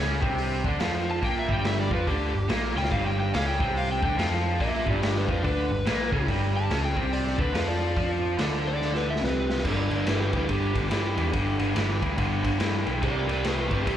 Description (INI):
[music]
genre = blues rock power trio and southern rock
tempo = 142 BPM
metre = 4/4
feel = swing 62% on 8ths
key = G major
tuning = A4 = 440 Hz
[part]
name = overdriven tonewheel organ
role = sustained chords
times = 0.0-14.0 s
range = B3 to D5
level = -43 LUFS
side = right 4 dB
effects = none
[part]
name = raw garage guitar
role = riff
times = 0.0-14.0 s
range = G2 to F4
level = -28 LUFS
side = right 1 dB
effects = overdrive, spring reverb, slapback echo
[part]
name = overdriven picked electric bass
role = bass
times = 0.0-14.0 s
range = G1 to G2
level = -29 LUFS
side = equal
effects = none
[part]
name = raw garage drum kit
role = drums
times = 0.2-14.0 s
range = crash cymbal, hi-hat, kick drum, ride cymbal, snare drum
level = -30 LUFS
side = equal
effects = none
[part]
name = overdriven slide guitar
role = melody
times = 1.1-14.0 s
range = D4 to A5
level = -32 LUFS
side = left 1 dB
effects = slapback echo
[part]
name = lead guitar through a small cranked amp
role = second line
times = 9.7-14.0 s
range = D4 to B4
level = -39 LUFS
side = right 3 dB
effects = none
[sound]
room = small room ambience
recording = live gig heard through the venue's PA, club reverb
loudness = -23 LUFS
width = side -10 dB against mid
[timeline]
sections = 0.0-9.6 A section; 9.6-14.0 B section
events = electric slide guitar solo 0.0-9.6; drum fill 2.7, 8.8-9.6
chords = 0.0 G; 13.0 C